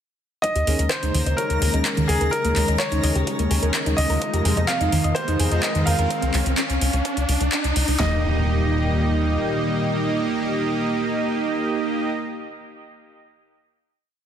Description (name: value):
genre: progressive house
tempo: 127 BPM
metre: 4/4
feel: straight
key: Eb mixolydian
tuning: A4 = 439 Hz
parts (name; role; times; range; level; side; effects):
- bright grand piano; melody; 0.4-12.1 s; Ab4 to F5; -27 LUFS; equal; sidechain pumping, dub echo
- warm analog pad; sustained chords; 0.4-12.1 s; Bb2 to G4; -29 LUFS; left 2 dB; chorus, sidechain pumping
- soft round pluck; arpeggios; 0.4-8.2 s; Eb3 to Eb5; -28 LUFS; right 1 dB; chorus, vintage 12-bit sampler grit, sidechain pumping, dub echo
- deep house drum kit; drums; 0.4-8.0 s; handclaps, hi-hat; -27 LUFS; equal; overdrive, sidechain pumping on hats
- pop drum kit; drums; 0.4-8.1 s; handclaps, kick drum, snare drum; -31 LUFS; left 1 dB; overdrive, high-pass filter on kick, high-pass filter on snare, high-pass filter on room
- riser and impact; sound effects; 2.4-12.1 s; none; -30 LUFS; equal; none
- twinkling granular texture; texture; 1.0-6.1 s; Bb4 to Bb5; -35 LUFS; left 2 dB; built-in reverb, sidechain pumping
- tight sequencer bass; bass; 0.6-9.4 s; Db2 to F2; -22 LUFS; left 1 dB; sidechain pumping
- soft supersaw; stabs; 0.7-12.1 s; Ab3 to F5; -26 LUFS; right 3 dB; sidechain pumping, low-pass filter, dub echo
room: light reverb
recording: dense, heavily limited modern master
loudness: -19 LUFS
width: side -9 dB against mid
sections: 0.4-8.0 build; 8.0-11.8 final chord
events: build-up 0.4-8.0; filter sweep on synth pluck 0.4-6.1; filter sweep on supersaw synth 0.4-6.1; riser 2.4-8.0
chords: 0.4 Eb7sus4; 4.2 Fm7; 6.1 Db; 8.0 Eb